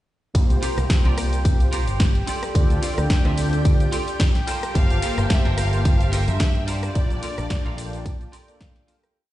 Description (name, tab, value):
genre	nu-disco, nu disco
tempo	109 BPM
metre	4/4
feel	swing 55% on 16ths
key	unclear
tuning	A4 = 440 Hz
part	mellow synth brass	accompaniment	0.3-9.0 s	Bb3 to A5	-30 LUFS	left 1 dB	chorus, cassette tape, sidechain pumping, digital delay
part	lush unison pad	sustained chords	0.3-9.2 s	G4 to G5	-33 LUFS	equal	chorus, sidechain pumping
part	picked electric bass with an envelope filter	bass	0.3-8.3 s	G1 to G2	-23 LUFS	equal	none
part	electronic kick drum	drums	0.3-8.7 s	none	-20 LUFS	equal	none
part	house drum kit	drums	0.3-9.1 s	hi-hat, ride cymbal, rim click, shaker, snare drum	-29 LUFS	equal	none
part	clean electric guitar	riff	0.6-9.2 s	F4 to A5	-32 LUFS	right 2 dB	ensemble chorus, digital delay
part	warm symphonic violin section	melody	4.8-8.6 s	D5 to F5	-31 LUFS	equal	vintage 12-bit sampler grit, dub echo
room	light reverb, digital ambience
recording	played on a big sound system in a bare room, stone room reverb, nothing above 10.6 kHz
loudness	-18 LUFS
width	side -15 dB against mid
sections	0.3-9.2 drop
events	drop 0.3-9.2; fade-out 6.2-9.2; clean electric guitar fill 8.1-9.2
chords	0.3 C7sus4; 2.3 Dm7; 4.5 Gm11; 7.0 Bbmaj7